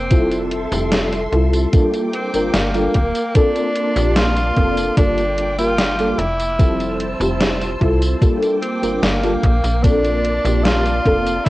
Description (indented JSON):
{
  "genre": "vaporwave",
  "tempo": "74 BPM",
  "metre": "4/4",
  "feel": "straight",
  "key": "G dorian",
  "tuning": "A4 = 439 Hz",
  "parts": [
    { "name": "breathy tenor saxophone", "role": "melody", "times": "0.0-11.5 s", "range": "Bb3 to F4", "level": "-22 LUFS", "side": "equal", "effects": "tape echo" },
    { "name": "soft string machine", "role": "sustained chords", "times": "0.0-11.5 s", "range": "Bb3 to E6", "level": "-26 LUFS", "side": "equal", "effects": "ensemble chorus" },
    { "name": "slap-like FM bass", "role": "bass", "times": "0.0-11.5 s", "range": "D1 to C2", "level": "-21 LUFS", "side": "equal", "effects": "tube saturation" },
    { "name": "mellow FM electric piano", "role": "accompaniment", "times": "0.1-11.5 s", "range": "F3 to Bb4", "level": "-20 LUFS", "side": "equal", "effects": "tremolo, ensemble chorus" },
    { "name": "electronic kick drum", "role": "drums", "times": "0.1-11.5 s", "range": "none", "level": "-15 LUFS", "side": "equal", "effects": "cassette tape" },
    { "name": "gated 80s digital drum machine", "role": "drums", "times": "0.1-11.5 s", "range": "hi-hat, snare drum, tambourine", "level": "-22 LUFS", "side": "equal", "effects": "gated reverb, gated reverb snare, cassette tape" }
  ],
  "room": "moderate booth ambience, RT60 0.2 s",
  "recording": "home recording on cassette",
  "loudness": "-15 LUFS",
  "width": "side -18 dB against mid",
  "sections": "0.0-11.5 A section",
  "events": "none",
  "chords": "0.1 Fmaj7; 1.7 Gm7; 3.4 Bbmaj9; 5.0 Gm7; 6.6 Fmaj7; 8.2 Gm7; 9.8 Bbmaj9"
}